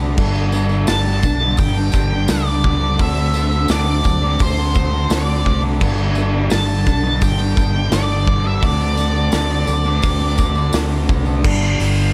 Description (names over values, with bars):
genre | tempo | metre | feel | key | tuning
rock, shoegaze and dream pop | 85 BPM | 4/4 | straight | unclear | A4 = 440 Hz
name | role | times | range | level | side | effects
mellow electric guitar | riff | 0.0-12.1 s | D3 to A4 | -27 LUFS | equal | reverse reverb
thick fuzz guitar | riff | 0.0-12.1 s | G2 to D4 | -25 LUFS | equal | distortion, analog chorus
fingered electric bass | bass | 0.0-12.1 s | G1 to D2 | -21 LUFS | equal | none
tambourine | percussion | 0.0-11.3 s | none | -37 LUFS | equal | none
loose indie drum kit | drums | 0.2-12.0 s | crash cymbal, hi-hat, kick drum, snare drum | -23 LUFS | equal | none
octave-fuzz lead guitar | melody | 0.9-10.7 s | C5 to A5 | -26 LUFS | equal | distortion, tape echo
room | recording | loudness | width
small room ambience | none | -17 LUFS | mono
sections
0.0-11.4 A section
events
none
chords
0.2 Gadd9; 3.0 D7; 5.8 Gadd9; 8.6 D7; 11.4 Gadd9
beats
| 0.18 0.88 1.59 2.29 | 3.00 3.70 4.40 5.11 | 5.81 6.51 7.22 7.92 | 8.62 9.33 10.03 10.74 | 11.44